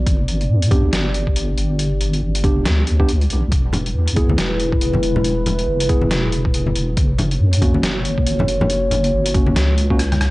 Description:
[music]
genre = deep dubstep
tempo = 139 BPM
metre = 4/4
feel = swing 59% on 16ths, half-time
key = unclear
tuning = A4 = 440 Hz
[part]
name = dark analog pad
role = sustained chords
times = 0.0-10.3 s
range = G#3 to D5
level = -24 LUFS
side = equal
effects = chorus, phaser, vintage 12-bit sampler grit
[part]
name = deep soft wobble bass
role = bass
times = 0.0-10.3 s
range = E1 to G2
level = -19 LUFS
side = equal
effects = chorus
[part]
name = electronic kick drum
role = drums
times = 0.1-10.0 s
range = none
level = -18 LUFS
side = equal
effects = none
[part]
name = trip hop sampler-style drum kit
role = drums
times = 0.1-10.3 s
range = hi-hat, rim click, snare drum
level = -24 LUFS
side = equal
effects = none
[part]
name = tine electric piano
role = stabs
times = 0.7-10.0 s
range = A#3 to G#4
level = -25 LUFS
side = right 1 dB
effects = dub echo
[part]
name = congas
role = percussion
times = 3.7-10.2 s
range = none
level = -23 LUFS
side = left 1 dB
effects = none
[sound]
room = digital ambience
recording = dry, gritty hardware recording, nothing above 10.6 kHz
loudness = -15 LUFS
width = side -20 dB against mid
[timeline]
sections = 0.0-10.3 A section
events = drum fill 10.0-10.3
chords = 0.1 G; 3.5 E; 7.0 F#

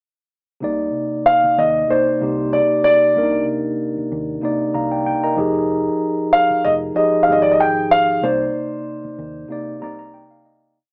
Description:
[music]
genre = lush 1970s-style soul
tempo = 95 BPM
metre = 4/4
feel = swing 54% on 16ths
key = C minor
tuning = A4 = 440 Hz
[part]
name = mellow tine electric piano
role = accompaniment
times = 0.6-10.8 s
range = C3 to Bb5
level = -23 LUFS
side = equal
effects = cassette tape
[part]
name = vintage muted fingered electric bass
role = bass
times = 0.6-10.2 s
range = F1 to Eb2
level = -35 LUFS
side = equal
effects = none
[part]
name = dark concert grand piano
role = melody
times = 1.3-10.1 s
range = C5 to G5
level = -17 LUFS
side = equal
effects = cassette tape
[sound]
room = moderate small room reverb, RT60 0.5 s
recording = home recording on cassette, small speaker sound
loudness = -18 LUFS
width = mono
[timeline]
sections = 0.6-10.8 A section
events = tine electric piano fill 4.7-5.7, 9.5-10.8; fade-out 8.2-10.8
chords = 0.6 Cm9; 5.4 Fm9; 8.2 Cm9

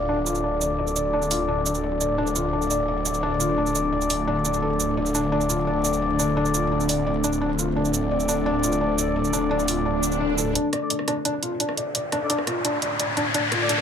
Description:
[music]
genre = dark technical drum and bass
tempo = 172 BPM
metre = 4/4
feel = straight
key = unclear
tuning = A4 = 439 Hz
[part]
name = deep dark ambient pad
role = sustained chords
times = 0.0-13.8 s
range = A3 to A5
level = -29 LUFS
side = left 1 dB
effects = chorus, built-in reverb
[part]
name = felt-muted upright piano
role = arpeggios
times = 0.0-13.8 s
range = D4 to D5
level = -28 LUFS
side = equal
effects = low-pass filter, ping-pong delay
[part]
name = warm brass ensemble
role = stabs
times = 0.0-13.7 s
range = D4 to D5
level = -26 LUFS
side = left 2 dB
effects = low-pass filter, ping-pong delay
[part]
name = snarling distorted saw bass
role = bass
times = 0.0-10.5 s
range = D1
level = -28 LUFS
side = equal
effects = distortion, overdrive
[part]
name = drum and bass drum kit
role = drums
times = 0.3-13.8 s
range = cabasa, hi-hat, rim click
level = -27 LUFS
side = right 4 dB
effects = overdrive
[part]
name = swell and riser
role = sound effects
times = 10.0-13.8 s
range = none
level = -27 LUFS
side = left 2 dB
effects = none
[sound]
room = light reverb, digital ambience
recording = none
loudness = -21 LUFS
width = side -8 dB against mid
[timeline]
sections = 0.0-10.6 A section; 10.6-13.8 B section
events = filter sweep on ambient pad 0.0-10.6, 10.6-13.8; filter sweep on felt piano 0.0-10.6, 10.6-13.8; swell 10.0-10.6; build-up 10.6-13.8; riser 10.6-13.8; filter sweep on brass ensemble 10.6-13.8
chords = 0.0 D5

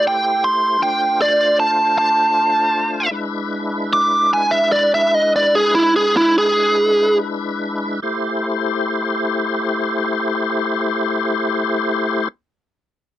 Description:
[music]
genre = blues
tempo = 46-52 BPM (dotted quarters)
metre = 12/8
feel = straight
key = A minor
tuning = A4 = 441 Hz
[part]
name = biting lead guitar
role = melody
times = 0.0-7.2 s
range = E4 to D6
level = -14 LUFS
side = right 1 dB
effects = overdrive
[part]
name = tonewheel organ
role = sustained chords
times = 0.0-12.3 s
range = G#3 to C5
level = -21 LUFS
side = left 2 dB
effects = slow rotary speaker, chorus vibrato
[sound]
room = little or no reverb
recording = dry, close 1970s-style studio recording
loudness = -15 LUFS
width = side -13 dB against mid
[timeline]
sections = 0.0-8.0 A section; 8.0-13.2 B section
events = lead electric guitar solo 0.0-8.0; slowing down 1.6-8.0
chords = 0.0 Am7; 0.8 Dm7; 3.1 E7; 8.0 Am7

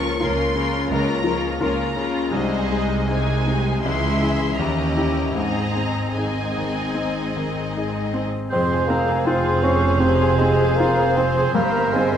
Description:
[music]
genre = classical, romantic movement for piano and orchestra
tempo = 78 BPM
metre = 4/4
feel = uneven beats, rubato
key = Ab major, F minor from 8.5 s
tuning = A4 = 440 Hz
[part]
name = clear concert grand piano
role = melody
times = 0.0-12.2 s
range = C2 to Bb4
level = -24 LUFS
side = left 2 dB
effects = none
[part]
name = rich symphonic violin section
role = melody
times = 0.0-12.2 s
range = Eb5 to Db6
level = -31 LUFS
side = left 2 dB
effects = none
[part]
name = warm studio violin section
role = second line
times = 0.0-12.2 s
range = G4 to Fb5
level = -30 LUFS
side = left 2 dB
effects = none
[part]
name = rich symphonic viola section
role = accompaniment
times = 0.0-12.2 s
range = Ab3 to Bb4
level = -30 LUFS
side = equal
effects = none
[part]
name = mellow French horn section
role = sustained chords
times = 0.0-12.2 s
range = Eb3 to C5-20c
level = -29 LUFS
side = left 3 dB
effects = none
[part]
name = warm symphonic cello section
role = bass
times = 0.0-12.2 s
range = C2 to Ab2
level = -28 LUFS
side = right 2 dB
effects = none
[part]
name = warm symphonic double bass section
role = bass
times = 0.0-12.2 s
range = F1 to Eb2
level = -27 LUFS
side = right 3 dB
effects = none
[part]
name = clear oboe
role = second line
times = 8.5-12.2 s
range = C5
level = -29 LUFS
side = right 3 dB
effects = none
[part]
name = concert flute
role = second line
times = 8.5-12.2 s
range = Ab5 to Db6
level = -27 LUFS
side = equal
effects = none
[part]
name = dark clarinet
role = second line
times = 8.5-12.2 s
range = Ab4 to Bb4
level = -31 LUFS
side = left 2 dB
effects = none
[part]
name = mellow bassoon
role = accompaniment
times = 8.5-12.2 s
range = Ab3 to Db4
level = -22 LUFS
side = right 2 dB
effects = none
[part]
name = dark trombone section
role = sustained chords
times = 8.5-12.2 s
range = F3 to C4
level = -30 LUFS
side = right 4 dB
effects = none
[sound]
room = wet recital hall reverb, RT60 1.7 s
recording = none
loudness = -18 LUFS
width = side -9 dB against mid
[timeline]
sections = 0.0-8.5 A section; 8.5-12.2 B section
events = none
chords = 0.0 Bbm/Db; 2.3 Ab/C; 3.8 Dbm; 4.6 Eb7b9; 5.4 Ab; 8.5 Fm; 11.6 C7/G

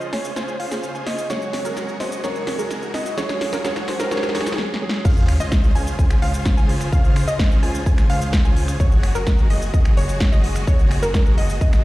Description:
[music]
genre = EDM, festival progressive house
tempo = 128 BPM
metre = 4/4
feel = straight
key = Db major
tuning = A4 = 442 Hz
[part]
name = soft struck synth lead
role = melody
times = 0.0-4.6 s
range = Ab4 to Eb5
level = -28 LUFS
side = equal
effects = chorus, dub echo
[part]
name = clear baby grand piano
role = accompaniment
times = 0.0-5.1 s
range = F3 to C5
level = -31 LUFS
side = right 2 dB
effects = sidechain pumping
[part]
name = clear studio string section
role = sustained chords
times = 0.0-11.8 s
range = Db3 to C5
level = -34 LUFS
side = equal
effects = sidechain pumping
[part]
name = wide unison pluck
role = arpeggios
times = 0.0-11.8 s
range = Bb4 to Ab5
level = -29 LUFS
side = equal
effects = sidechain pumping, dub echo
[part]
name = big supersaw lead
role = riff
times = 0.0-11.8 s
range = Db4 to Ab5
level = -30 LUFS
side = right 1 dB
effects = sidechain pumping, low-pass filter, dub echo
[part]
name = fat analog bass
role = bass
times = 0.0-11.8 s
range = Gb1 to Db2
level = -25 LUFS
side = equal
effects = sidechain pumping, high-pass filter
[part]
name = big-room dance drum kit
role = drums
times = 0.0-11.8 s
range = crash cymbal, finger snaps, hi-hat, shaker, snare drum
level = -27 LUFS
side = equal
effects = none
[part]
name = riser and sub drop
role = sound effects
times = 0.5-6.9 s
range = none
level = -30 LUFS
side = equal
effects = none
[part]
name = electronic kick drum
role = drums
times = 5.0-11.7 s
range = none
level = -16 LUFS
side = equal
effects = none
[sound]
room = light reverb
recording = played on a big sound system in a bare room, large studio reverb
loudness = -17 LUFS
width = side -17 dB against mid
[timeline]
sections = 0.0-5.0 A section; 5.0-11.8 B section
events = build-up 0.0-5.0; drum fill 0.0-4.6, 4.6-5.0; filter sweep on synth pluck 0.0-5.0; break 4.6-5.0; drop 5.0-11.8; impact 5.0-6.9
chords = 0.0 Dbmaj7; 1.3 Gbsus2; 5.0 Dbmaj7; 8.8 Gbsus2

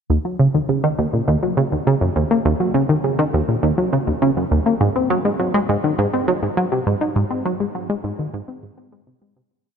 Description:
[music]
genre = ambient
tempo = 102 BPM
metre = 4/4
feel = straight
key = Eb dorian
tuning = A4 = 436 Hz
[part]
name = tight sequenced synth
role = solo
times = 0.1-9.4 s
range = Eb2 to Eb4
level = -17 LUFS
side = equal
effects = chorus, vintage 12-bit sampler grit, tape echo
[sound]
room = wet huge ambient reverb, RT60 7.6 s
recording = none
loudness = -17 LUFS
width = side -7 dB against mid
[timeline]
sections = 0.1-9.5 A section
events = fade-out 6.4-9.5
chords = none

